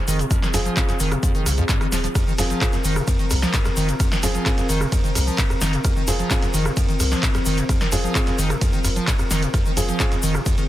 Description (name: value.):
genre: acid house.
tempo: 130 BPM.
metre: 4/4.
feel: straight.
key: F minor.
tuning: A4 = 441 Hz.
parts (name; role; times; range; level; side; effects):
warbly tape-like pad; sustained chords; 0.0-10.7 s; F3 to Bb4; -29 LUFS; left 2 dB; chorus, built-in reverb, sidechain pumping.
acid bass, square; riff; 0.1-10.6 s; F2 to F3; -25 LUFS; equal; lush chorus, cassette tape, sidechain pumping, digital delay.
warm sub bass; bass; 0.1-10.4 s; Eb1 to C2; -24 LUFS; equal; tube saturation, sidechain pumping.
punchy analog drum machine; drums; 0.1-10.7 s; handclaps, hi-hat, ride cymbal, rim click, snare drum; -26 LUFS; right 1 dB; none.
egg shaker; percussion; 0.1-10.7 s; none; -32 LUFS; left 3 dB; none.
electronic kick drum; drums; 0.3-10.6 s; none; -22 LUFS; equal; overdrive.
dark grand piano; stabs; 0.5-10.1 s; C4 to Ab4; -29 LUFS; right 2 dB; digital delay.
room: light reverb.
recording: dense, heavily limited modern master.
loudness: -18 LUFS.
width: side -14 dB against mid.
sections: 0.0-10.7 A section.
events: none.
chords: 0.0 Fm.